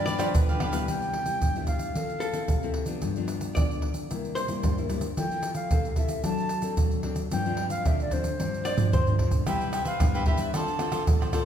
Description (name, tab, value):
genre	samba and choro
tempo	112 BPM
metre	4/4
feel	straight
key	C major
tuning	A4 = 442 Hz
part	wooden flute	melody	0.0-11.0 s	C5 to A5	-32 LUFS	right 1 dB	none
part	cavaquinho	accompaniment	0.0-0.9, 9.5-11.4 s	D4 to F5	-33 LUFS	right 1 dB	none
part	nylon-string guitar	accompaniment	0.0-11.4 s	G2 to A4	-31 LUFS	left 5 dB	none
part	archtop guitar, miked and amplified	second line	0.1-5.0, 8.7-9.4 s	A4 to D5	-34 LUFS	left 1 dB	none
part	egg shaker, pandeiro, tamborim and surdo	percussion	0.1-11.4 s	none	-27 LUFS	right 1 dB	none
room	wet recital hall reverb, RT60 1.6 s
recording	recorded in a church or concert hall, faint mains hum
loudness	-24 LUFS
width	side -9 dB against mid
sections	0.9-9.5 A section; 9.5-11.4 B section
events	drum fill 8.7-9.5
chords	0.0 G7; 0.9 Cmaj7; 1.9 Fmaj7; 3.0 G7; 4.1 C7; 5.2 Fmaj7; 6.2 D7/F#; 7.3 G7sus4; 9.5 Cmaj7; 10.5 Dm7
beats	0.34 | 0.88 1.41 1.95 2.48 | 3.02 3.56 4.09 4.63 | 5.17 5.71 6.24 6.78 | 7.32 7.85 8.39 8.93 | 9.46 10.00 10.54 11.07